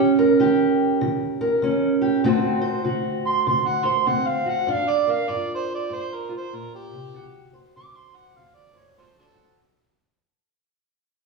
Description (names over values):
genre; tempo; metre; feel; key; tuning
acoustic country blues, solo or duo; 98 BPM; 4/4; swing 61% on 8ths; unclear; A4 = 440 Hz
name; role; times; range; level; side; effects
fingerpicked steel-string acoustic guitar; accompaniment; 0.0-9.6 s; G2 to C5; -21 LUFS; right 2 dB; none
overdriven harmonica; melody; 3.3-9.6 s; D4 to D6; -23 LUFS; right 3 dB; none
room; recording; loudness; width
wet recital hall reverb, RT60 1.2 s; heard from further back in the room; -19 LUFS; side -2 dB against mid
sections
0.0-9.6 A section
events
fade-out 0.0-9.6; harmonica solo 0.0-9.6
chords
0.0 Eb7; 2.2 D7; 4.7 Gm7; 7.1 D7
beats
0.41 1.02 1.63 | 2.25 2.86 3.47 4.08 | 4.70 5.31 5.92 6.53 | 7.14 7.75 8.36 8.97